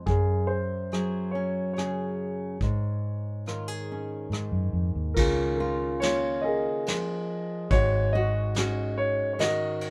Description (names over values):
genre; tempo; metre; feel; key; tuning
acoustic folk-pop ballad; 71 BPM; 3/4; straight; Db major; A4 = 440 Hz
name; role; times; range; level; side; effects
nylon-string guitar; accompaniment; 0.0-9.9 s; Gb2 to Ab4; -34 LUFS; equal; none
dark concert grand piano; melody; 0.1-9.9 s; F4 to Eb5; -31 LUFS; equal; none
vintage muted fingered electric bass; bass; 0.1-9.2 s; Ab1 to Ab2; -32 LUFS; equal; none
vintage brush drum kit; drums; 0.1-9.9 s; crash cymbal, hi-hat, kick drum, ride cymbal, rim click, snare drum; -33 LUFS; equal; none
room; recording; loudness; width
little or no reverb; none; -28 LUFS; mono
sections
0.0-5.2 A section; 5.2-9.9 B section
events
none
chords
0.1 Gbsus2; 2.6 Absus4; 4.3 Ab5; 5.2 Db6; 7.7 Ab7sus4